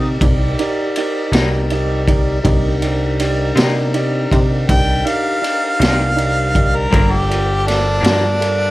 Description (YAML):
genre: slow blues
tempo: 54 BPM (dotted quarters)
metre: 12/8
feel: straight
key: unclear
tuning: A4 = 438 Hz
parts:
  - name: clear harmonica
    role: melody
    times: 0.0-8.7 s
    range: D4 to G5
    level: -18 LUFS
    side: equal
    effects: overdrive, plate reverb
  - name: warm upright piano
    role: accompaniment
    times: 0.0-8.7 s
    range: Eb4 to Eb5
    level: -24 LUFS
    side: right 5 dB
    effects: plate reverb
  - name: mellow tonewheel organ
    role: sustained chords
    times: 0.0-8.7 s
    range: D4 to D5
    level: -23 LUFS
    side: equal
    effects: slow rotary speaker, plate reverb
  - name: plucky analog bass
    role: bass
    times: 0.0-8.7 s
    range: G1 to C3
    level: -18 LUFS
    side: equal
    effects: none
  - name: raw garage drum kit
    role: drums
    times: 0.2-8.6 s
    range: kick drum, ride cymbal, snare drum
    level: -18 LUFS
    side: equal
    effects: none
  - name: electric guitar at the edge of break-up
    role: accompaniment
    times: 1.3-8.3 s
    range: G2 to Eb4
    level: -25 LUFS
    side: left 4 dB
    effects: tremolo, plate reverb
room: light reverb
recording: none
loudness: -13 LUFS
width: side -17 dB against mid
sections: 0.0-8.7 A section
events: harmonica solo 0.0-8.7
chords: 0.0 Cm7; 6.9 Gm7